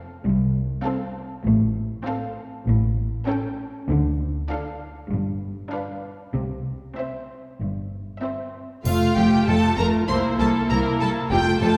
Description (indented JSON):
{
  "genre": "cinematic, playful, whimsical film cue",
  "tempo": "98 BPM",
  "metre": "4/4",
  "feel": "straight",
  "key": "F major",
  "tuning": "A4 = 440 Hz",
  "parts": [
    { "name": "rich studio violin section", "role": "melody", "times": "0.0-11.8 s", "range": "E5 to C6", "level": "-32 LUFS", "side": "equal", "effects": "none" },
    { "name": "warm studio violin section", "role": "second line", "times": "0.0-11.7 s", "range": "F4 to C5", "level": "-32 LUFS", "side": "equal", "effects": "none" },
    { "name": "rich studio viola section", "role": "accompaniment", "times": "0.0-11.8 s", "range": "A3 to F4", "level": "-26 LUFS", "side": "equal", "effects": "none" },
    { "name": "dark studio double bass section", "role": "bass", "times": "0.2-11.7 s", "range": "F1 to D2", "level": "-29 LUFS", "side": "equal", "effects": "none" },
    { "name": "rich studio cello section", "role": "bass", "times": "0.2-11.7 s", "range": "C2 to D3", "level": "-29 LUFS", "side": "equal", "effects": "none" },
    { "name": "triangle", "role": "percussion", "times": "8.9-10.0 s", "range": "none", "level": "-45 LUFS", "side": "equal", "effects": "none" }
  ],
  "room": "wet concert hall reverb, RT60 2.1 s",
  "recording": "heard from further back in the room",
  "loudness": "-24 LUFS",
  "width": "mono",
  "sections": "0.0-8.9 A section; 8.9-11.8 B section",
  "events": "none",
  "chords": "0.0 F; 1.5 F/A; 2.7 A7; 3.9 Dm; 5.1 G7; 6.3 C; 8.9 F; 10.1 C7",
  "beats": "0.24 0.85 | 1.46 2.06 2.67 3.28 | 3.89 4.50 5.10 5.72 | 6.35 6.98 7.61 8.23 | 8.86 9.48 10.09 10.70 | 11.31"
}